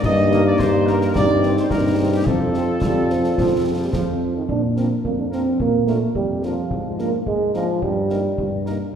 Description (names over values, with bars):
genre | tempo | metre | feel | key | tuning
military-style march for wind band | 108 BPM | 2/4 | straight | Bb major | A4 = 440 Hz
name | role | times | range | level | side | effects
clear trumpet section | melody | 0.0-8.8 s | G4 to Eb5 | -25 LUFS | right 1 dB | none
warm French horn section | accompaniment | 0.0-8.8 s | G3 to F4 | -24 LUFS | left 2 dB | none
clear tuba | bass | 0.0-8.8 s | F2 to Bb2 | -22 LUFS | equal | none
clash cymbals, concert bass drum and concert snare drum | drums | 0.0-8.8 s | none | -27 LUFS | left 1 dB | none
clear trombone section | sustained chords | 0.3-4.4 s | Eb3 to C4 | -26 LUFS | right 2 dB | none
warm euphonium | second line | 4.5-8.7 s | F3 to D4 | -21 LUFS | right 3 dB | none
room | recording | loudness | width
wet concert hall reverb, RT60 1.7 s | heard from further back in the room | -17 LUFS | side -8 dB against mid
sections
0.0-4.5 A section; 4.5-9.0 B section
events
none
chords
0.0 Eb/G; 1.2 Cm/G; 2.3 F; 4.5 Bb; 6.7 Bb7/Ab; 7.8 Eb/G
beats
| 0.05 0.60 | 1.16 1.71 | 2.27 2.82 | 3.38 3.93 | 4.49 5.04 | 5.60 6.16 | 6.71 7.27 | 7.82 8.38